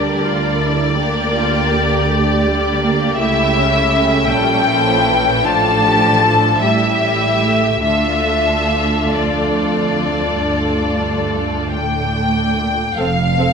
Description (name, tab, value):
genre	classical, slow romantic movement for string orchestra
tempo	43-55 BPM (dotted quarters)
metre	12/8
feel	rubato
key	D minor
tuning	A4 = 440 Hz
part	warm symphonic violin section	melody	0.0-13.5 s	D5 to A5	-17 LUFS	left 3 dB	none
part	clear chamber violin section	second line	0.0-13.5 s	D4 to G5	-22 LUFS	left 2 dB	none
part	warm studio viola section	accompaniment	0.0-13.5 s	E3 to A4	-20 LUFS	right 2 dB	none
part	dark symphonic cello section	bass	0.0-13.5 s	D2 to D3	-22 LUFS	right 3 dB	none
part	warm symphonic double bass section	bass	0.0-13.5 s	F1 to D2	-23 LUFS	right 2 dB	none
room	wet scoring stage reverb, RT60 1.9 s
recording	minimal, uncompressed stereo recording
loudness	-13 LUFS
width	side -6 dB against mid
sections	0.0-13.0 A section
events	none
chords	0.0 Em7b5/D (rootless); 3.2 A7/C#; 5.4 Dm/A; 6.6 A5; 7.8 Dm; 13.0 F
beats	0.97 2.09 | 3.19 4.31 5.45 6.63 | 7.85 9.12 10.39 11.74 | 12.98